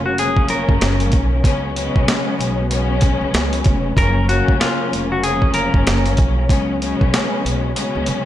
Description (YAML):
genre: hip hop, boom-bap hip-hop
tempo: 95 BPM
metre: 4/4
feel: swing 60% on 16ths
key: F# major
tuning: A4 = 439 Hz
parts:
  - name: semi-hollow electric guitar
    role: melody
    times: 0.0-6.0 s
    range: E#4 to A#4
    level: -22 LUFS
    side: left 1 dB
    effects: spring reverb, high-pass filter, low-pass filter, digital delay
  - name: dark studio string section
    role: accompaniment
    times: 0.0-8.3 s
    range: C#3 to C#4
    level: -21 LUFS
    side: left 3 dB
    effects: high-pass filter, low-pass filter
  - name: warm analog pad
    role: sustained chords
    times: 0.0-8.3 s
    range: C#3 to E#5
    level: -30 LUFS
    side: equal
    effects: chorus, high-pass filter, low-pass filter
  - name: upright bass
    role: bass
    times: 0.0-8.3 s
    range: E#1 to C#3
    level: -21 LUFS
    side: right 1 dB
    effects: none
  - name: boom bap sampler-style drum kit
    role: drums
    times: 0.2-8.2 s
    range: hi-hat, kick drum, rim click, snare drum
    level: -18 LUFS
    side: equal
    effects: vintage 12-bit sampler grit
room: light reverb, digital ambience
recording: none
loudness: -15 LUFS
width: side -12 dB against mid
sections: 0.0-8.3 A section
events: kick muted 7.8-8.3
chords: 0.0 F#maj7; 1.4 C#7sus4; 4.0 F#maj7; 6.5 C#7sus4